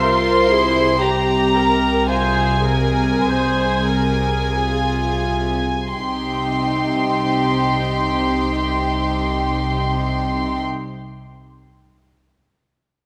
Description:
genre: classical, slow romantic movement for symphony orchestra.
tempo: 41-59 BPM.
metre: 3/4.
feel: rubato.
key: C minor.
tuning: A4 = 438 Hz.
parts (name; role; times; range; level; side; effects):
warm studio violin section; melody; 0.0-10.6 s; Ab5 to C6; -24 LUFS; equal; none.
warm studio violin section; second line; 0.0-10.6 s; E4 to G5; -25 LUFS; equal; none.
warm studio viola section; accompaniment; 0.0-10.6 s; C4 to C5; -26 LUFS; equal; none.
rich studio double bass section; bass; 0.0-10.6 s; C2; -26 LUFS; equal; none.
warm studio cello section; bass; 0.0-10.6 s; C3; -27 LUFS; equal; none.
room: moderate scoring stage reverb, RT60 1.9 s.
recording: none.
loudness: -19 LUFS.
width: mono.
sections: 0.0-5.9 A section; 5.9-10.0 B section.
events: slowing down 0.0-5.9.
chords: 0.0 C7; 2.1 Fm/C; 5.9 Cm.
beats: 1.02 | 2.09 3.26 4.53 | 5.94 7.28 8.62.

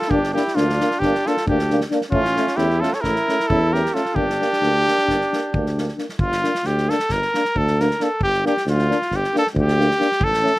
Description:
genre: balkan folk, Balkan brass band.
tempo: 267 BPM (eighths).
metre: 9/8.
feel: straight.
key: G dorian sharp4.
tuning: A4 = 440 Hz.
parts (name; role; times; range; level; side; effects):
warm trumpet; melody; 0.0-10.6 s; F4 to C#5; -20 LUFS; equal; none.
clear flugelhorn; second line; 0.0-6.0 s; C#4 to A4; -25 LUFS; right 2 dB; slapback echo.
unplugged drum kit; percussion; 0.0-10.6 s; kick drum, snare drum; -28 LUFS; equal; none.
warm euphonium; accompaniment; 0.1-10.5 s; C#4 to D4; -24 LUFS; left 4 dB; none.
warm euphonium; accompaniment; 0.1-10.5 s; A3 to Bb3; -27 LUFS; right 4 dB; none.
warm tuba; bass; 0.1-10.4 s; G1 to E2; -23 LUFS; equal; none.
room: little or no reverb.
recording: recorded outdoors, with no room sound.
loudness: -17 LUFS.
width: side -18 dB against mid.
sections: 0.0-6.2 A section; 6.2-10.6 A section.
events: none.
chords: 0.0 Gm; 2.1 A; 4.2 Gm.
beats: | 0.09 0.32 0.54 0.77 0.99 1.22 1.45 1.67 1.90 | 2.12 2.35 2.58 2.80 3.03 3.25 3.48 3.70 3.93 | 4.16 4.38 4.61 4.83 5.06 5.28 5.50 5.73 5.95 | 6.18 6.40 6.63 6.85 7.08 7.30 7.52 7.75 7.97 | 8.19 8.42 8.64 8.86 9.09 9.31 9.53 9.76 9.98 | 10.20 10.42.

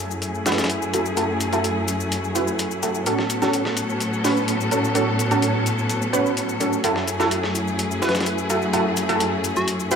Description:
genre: breakbeat, breaks.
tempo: 127 BPM.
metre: 4/4.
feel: straight.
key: F# minor.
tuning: A4 = 444 Hz.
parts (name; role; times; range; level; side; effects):
clear studio string section; sustained chords; 0.0-10.0 s; F#2 to A4; -23 LUFS; left 1 dB; vintage 12-bit sampler grit, low-pass filter.
shaker; drums; 0.1-10.0 s; none; -33 LUFS; left 9 dB; none.
dusty soul sampler-style drum kit; drums; 0.2-10.0 s; hi-hat, snare drum; -27 LUFS; left 1 dB; high-pass filter on snare, high-pass filter on hats, high-pass filter on kick.
orchestra-hit-like synth stab; stabs; 0.5-10.0 s; C#4 to B4; -23 LUFS; right 2 dB; built-in reverb, cassette tape, tape echo.
plucky unison lead; melody; 8.0-9.7 s; F#4 to B4; -27 LUFS; equal; small speaker sound, tape echo.
room: moderate lush hall reverb, RT60 2.0 s, digital ambience.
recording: none.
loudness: -19 LUFS.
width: side -6 dB against mid.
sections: 0.0-10.0 A section.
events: filter sweep on synth stab 0.0-10.0.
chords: 0.0 F#m7; 3.1 A6; 6.8 F#m7.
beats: 0.23 0.70 | 1.17 1.65 2.12 2.59 | 3.06 3.54 4.01 4.48 | 4.95 5.43 5.90 6.37 | 6.84 7.32 7.79 8.26 | 8.73 9.21 9.68.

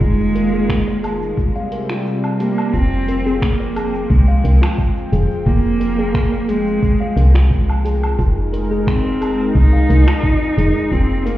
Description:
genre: organic downtempo.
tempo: 88 BPM.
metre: 4/4.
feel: straight.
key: F minor.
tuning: A4 = 442 Hz.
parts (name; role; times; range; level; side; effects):
rich cello; melody; 0.0-11.4 s; Ab3 to Eb4; -20 LUFS; right 1 dB; digital delay, shimmer reverb.
warm analog pad; sustained chords; 0.0-11.4 s; C3 to G5; -24 LUFS; equal; chorus, sidechain pumping, shimmer reverb.
kalimba; arpeggios; 0.0-11.4 s; F4 to F5; -25 LUFS; left 2 dB; digital delay, shimmer reverb.
woody FM bass; bass; 0.0-11.4 s; F1 to C2; -16 LUFS; equal; tube saturation, sidechain pumping.
deep house drum kit; drums; 0.0-11.4 s; finger snaps, hi-hat, shaker, woodblock; -29 LUFS; right 1 dB; none.
electronic kick drum; drums; 0.0-11.1 s; none; -18 LUFS; equal; none.
room: light reverb.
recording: heard muffled through a wall, stone room reverb, EQ.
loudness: -14 LUFS.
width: side -15 dB against mid.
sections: 0.0-2.7 A section; 2.7-11.4 B section.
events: none.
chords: 0.0 Ebsus4/F; 1.4 C5; 2.7 Fm; 8.2 Ab/F.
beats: | 0.01 0.69 1.38 2.06 | 2.74 3.42 4.10 4.79 | 5.47 6.15 6.83 7.51 | 8.19 8.88 9.56 10.24 | 10.92.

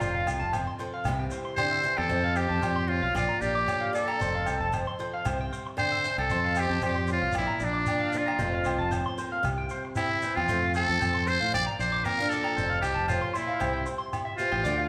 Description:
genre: highlife guitar band.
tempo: 115 BPM.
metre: 4/4.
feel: straight.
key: F major.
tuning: A4 = 440 Hz.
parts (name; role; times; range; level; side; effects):
trumpet with metal mute; melody; 0.0-14.9 s; D4 to D5; -30 LUFS; equal; none.
picked steel-string acoustic guitar; accompaniment; 0.0-14.9 s; F2 to A4; -38 LUFS; equal; none.
electric guitar at the edge of break-up; arpeggios; 0.0-14.9 s; C5 to D6; -35 LUFS; equal; phaser.
fingered electric bass; bass; 0.0-14.9 s; F1 to A2; -35 LUFS; equal; none.
shekere; percussion; 0.0-14.8 s; none; -40 LUFS; equal; none.
agogo bells; percussion; 0.3-14.6 s; none; -38 LUFS; equal; none.
room: wet large studio reverb, RT60 1.5 s.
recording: band playing live in one room.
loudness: -28 LUFS.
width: mono.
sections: 0.0-14.6 A section.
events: none.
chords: 0.0 F; 1.1 C; 2.1 F; 3.2 Bb; 4.2 F; 5.2 C; 6.3 F; 7.3 Bb; 8.4 F; 9.4 C; 10.5 F; 11.5 Bb; 12.6 F; 13.6 C.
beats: | 0.01 0.54 1.06 1.59 | 2.11 2.63 3.16 3.68 | 4.20 4.73 5.25 5.77 | 6.30 6.82 7.34 7.87 | 8.39 8.91 9.43 9.95 | 10.48 11.00 11.52 12.04 | 12.56 13.09 13.61 14.13 | 14.65.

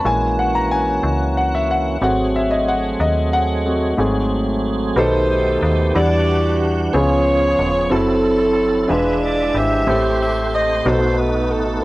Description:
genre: slow gospel.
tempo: 61 BPM (dotted quarters).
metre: 6/8.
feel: straight.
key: unclear.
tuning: A4 = 440 Hz.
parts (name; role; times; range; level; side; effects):
warm concert grand piano; accompaniment; 0.0-11.8 s; G#2 to A#5; -20 LUFS; left 1 dB; cassette tape.
metallic FM bass; bass; 0.0-11.8 s; D#1 to E2; -22 LUFS; equal; none.
tonewheel organ; sustained chords; 0.1-11.8 s; D#3 to F#5; -22 LUFS; right 2 dB; fast rotary speaker, chorus vibrato, cassette tape.
clear saxophone section; melody; 5.0-11.8 s; C4 to E5; -19 LUFS; right 1 dB; cassette tape.
room: moderate studio reverb, RT60 0.6 s.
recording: home recording on cassette.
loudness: -15 LUFS.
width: side -18 dB against mid.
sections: 0.0-4.0 A section; 4.0-5.9 B section; 5.9-11.8 C section.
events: grand piano solo 0.0-4.0.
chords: 0.1 F#7/A#; 2.0 G#7b9; 5.0 B7b13; 5.9 Em9; 6.9 C#7; 7.9 F#m7b5; 8.9 E7b9; 9.9 Am7; 10.9 B7.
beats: | 0.05 1.03 | 2.02 3.00 | 3.98 4.96 | 5.95 6.93 | 7.91 8.89 | 9.88 10.86 | 11.84.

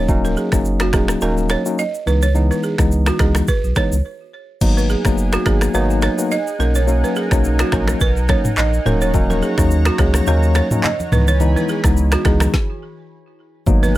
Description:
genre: afrobeats.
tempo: 106 BPM.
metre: 4/4.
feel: swing 55% on 16ths.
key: unclear.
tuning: A4 = 435 Hz.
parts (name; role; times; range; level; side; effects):
tine electric piano; accompaniment; 0.0-14.0 s; E3 to D#4; -20 LUFS; left 2 dB; medium stereo tremolo.
balafon; riff; 0.0-14.0 s; F#4 to D#5; -23 LUFS; right 6 dB; digital delay.
saturated sub bass; bass; 0.0-14.0 s; D#1 to D#2; -18 LUFS; equal; none.
afro-pop drum kit; drums; 0.1-14.0 s; crash cymbal, finger snaps, handclaps, kick drum, rim click, shaker, snare drum, toms; -19 LUFS; equal; none.
lush unison pad; sustained chords; 4.6-14.0 s; E3 to B5; -28 LUFS; equal; chorus.
congas; percussion; 9.1-13.9 s; none; -28 LUFS; right 1 dB; none.
room: little or no reverb.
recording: none.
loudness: -14 LUFS.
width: side -15 dB against mid.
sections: 0.0-4.6 A section; 4.6-13.7 B section.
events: break 4.0-4.6; stop 12.5-13.7.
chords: 0.0 D#m7; 2.1 C#m7; 4.6 G#m7; 6.6 Bmaj7; 8.9 D#m7; 11.1 C#m7.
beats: | 0.09 0.65 1.22 1.78 | 2.35 2.92 3.48 4.05 | 4.61 5.18 5.75 6.31 | 6.88 7.44 8.01 8.58 | 9.14 9.71 10.28 10.84 | 11.41 11.97 12.54 13.11 | 13.67.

